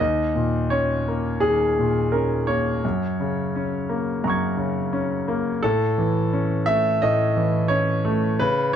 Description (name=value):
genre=neoclassical minimalist piano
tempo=86 BPM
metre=4/4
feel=rubato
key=unclear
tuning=A4 = 440 Hz
part: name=clear concert grand piano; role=solo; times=0.0-8.8 s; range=D#2 to G#6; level=-20 LUFS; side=equal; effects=none
room=moderate studio reverb, RT60 0.6 s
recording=dark, warm production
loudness=-20 LUFS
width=side -9 dB against mid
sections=0.0-8.8 A section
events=none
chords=0.0 D#5; 2.8 F#add9; 5.6 A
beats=0.71 1.42 2.13 | 2.83 3.53 4.23 4.92 | 5.62 6.32 7.01 7.71 | 8.40